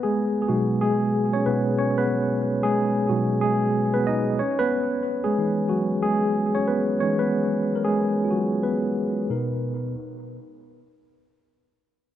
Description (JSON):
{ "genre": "R&B", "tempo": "92 BPM", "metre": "4/4", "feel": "swing 60% on 16ths", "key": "B major", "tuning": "A4 = 440 Hz", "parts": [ { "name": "tine electric piano", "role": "solo", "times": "0.0-10.0 s", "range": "B2 to D#5", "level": "-21 LUFS", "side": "equal", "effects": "medium stereo tremolo, analog delay" } ], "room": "wet spring reverb, RT60 1.7 s", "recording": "echo-heavy mix, nothing above 10.5 kHz", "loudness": "-21 LUFS", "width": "side -11 dB against mid", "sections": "0.0-9.9 A section", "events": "tine electric piano solo 0.0-9.9", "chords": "0.0 B6; 4.4 Emaj9; 9.3 Bmaj7" }